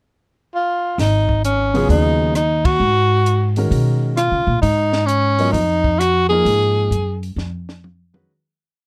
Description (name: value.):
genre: modal jazz.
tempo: 132 BPM.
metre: 4/4.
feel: swing 66% on 8ths.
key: G# dorian.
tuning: A4 = 440 Hz.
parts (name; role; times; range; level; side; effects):
breathy tenor saxophone; melody; 0.5-7.2 s; C#4 to G#4; -20 LUFS; equal; none.
upright bass; bass; 1.0-8.2 s; G#1 to C#3; -21 LUFS; equal; none.
compact cocktail drum kit; drums; 1.0-8.3 s; hi-hat, kick drum, ride cymbal, rim click, snare drum, toms; -28 LUFS; equal; none.
warm baby grand piano; accompaniment; 1.7-8.3 s; C#3 to D#5; -24 LUFS; equal; none.
room: little or no reverb.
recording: close, detailed microphones.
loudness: -17 LUFS.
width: mono.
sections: 0.0-1.0 pickup bar; 1.0-8.3 A section.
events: band accent 2.6; fade-out 6.5-8.3; drum fill 7.4-8.3.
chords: 0.0 N.C.; 1.0 G#m11; 4.6 C#add9 (rootless).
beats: 0.08 0.53 | 0.99 1.44 1.90 2.35 | 2.81 3.26 3.72 4.17 | 4.63 5.09 5.54 6.00 | 6.46 6.92 7.37 7.83.